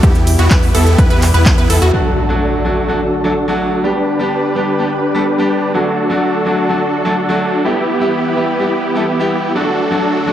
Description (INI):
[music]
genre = EDM, festival progressive house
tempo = 126 BPM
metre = 4/4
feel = straight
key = D major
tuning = A4 = 440 Hz
[part]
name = lush unison pad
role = sustained chords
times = 0.0-10.3 s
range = B2 to B4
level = -21 LUFS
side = left 1 dB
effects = chorus, sidechain pumping
[part]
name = wide unison pluck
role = arpeggios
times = 0.0-1.9 s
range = F#4 to B4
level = -22 LUFS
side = equal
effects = sidechain pumping, dub echo
[part]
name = supersaw chords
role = riff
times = 0.0-10.3 s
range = B3 to B4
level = -17 LUFS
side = equal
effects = sidechain pumping, low-pass filter, dub echo
[part]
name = saturated sub bass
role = bass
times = 0.0-1.9 s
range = E2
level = -13 LUFS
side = equal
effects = sidechain pumping
[part]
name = big-room dance drum kit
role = drums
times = 0.0-1.9 s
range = handclaps, hi-hat, ride cymbal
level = -21 LUFS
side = right 1 dB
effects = overdrive, low-pass filter on hats, low-pass filter on cymbals, low-pass filter on snare, low-pass filter on room
[part]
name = electronic kick drum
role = drums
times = 0.0-1.6 s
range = none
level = -12 LUFS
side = equal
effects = overdrive
[part]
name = bright grand piano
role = accompaniment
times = 1.9-10.3 s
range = F#3 to A4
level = -18 LUFS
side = equal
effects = sidechain pumping, dub echo
[part]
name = impact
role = sound effects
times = 1.9-3.8 s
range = none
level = -20 LUFS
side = equal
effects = none
[sound]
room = light reverb, digital ambience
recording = none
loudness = -12 LUFS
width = side -11 dB against mid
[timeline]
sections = 0.0-1.9 A section; 1.9-10.3 B section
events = drop 0.0-1.9; impact 1.9-3.8; filter sweep on supersaw synth 1.9-10.3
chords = 0.0 Em; 1.9 D; 3.8 G; 5.7 D; 7.7 Em; 9.6 D